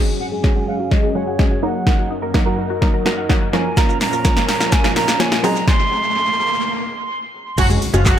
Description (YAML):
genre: dance-pop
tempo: 126 BPM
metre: 4/4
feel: straight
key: unclear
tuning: A4 = 440 Hz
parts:
  - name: breathy concert flute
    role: melody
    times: 0.0-7.1 s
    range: Db5 to C6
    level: -23 LUFS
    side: right 2 dB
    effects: low-pass filter, tape echo
  - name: wide unison pluck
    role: accompaniment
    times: 0.0-8.2 s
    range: F3 to Db5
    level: -24 LUFS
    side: left 1 dB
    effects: sidechain pumping, low-pass filter, tape echo
  - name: lush unison pad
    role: sustained chords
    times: 0.1-8.2 s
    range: Gb2 to Db6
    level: -26 LUFS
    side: left 1 dB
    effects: chorus, phaser, sidechain pumping, low-pass filter
  - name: mallet-like synth pluck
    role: arpeggios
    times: 0.0-5.5 s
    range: Gb3 to Gb5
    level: -29 LUFS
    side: left 4 dB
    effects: chorus, sidechain pumping, low-pass filter, tape echo
  - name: direct-recorded clean electric guitar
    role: riff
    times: 0.0-8.1 s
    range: Gb3 to Bb4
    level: -26 LUFS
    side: right 7 dB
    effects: wide subtle chorus, low-pass filter
  - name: riser and impact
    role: sound effects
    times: 2.1-8.2 s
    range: none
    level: -28 LUFS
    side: equal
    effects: none
  - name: deep house drum kit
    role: drums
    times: 0.4-8.2 s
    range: crash cymbal, handclaps, hi-hat, kick drum, shaker, snare drum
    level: -17 LUFS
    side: equal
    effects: tape echo
  - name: mellow horn section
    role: melody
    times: 7.6-8.2 s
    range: F3 to Gb4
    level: -21 LUFS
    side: right 1 dB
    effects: tape echo
  - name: vintage muted fingered electric bass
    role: bass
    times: 7.6-8.1 s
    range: Gb1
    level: -17 LUFS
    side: equal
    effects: sidechain pumping
room: light reverb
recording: echo-heavy mix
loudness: -15 LUFS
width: side -10 dB against mid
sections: 0.0-7.6 A section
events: build-up 0.0-7.6; drum fill 0.0-5.7; filter sweep 0.0-7.6; riser 2.1-7.6; stop 5.7-7.6; impact 7.6-8.2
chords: 0.0 Gbsus2; 1.6 Ebm/Gb; 3.5 Bbm; 5.4 Ab7; 7.6 Gbsus2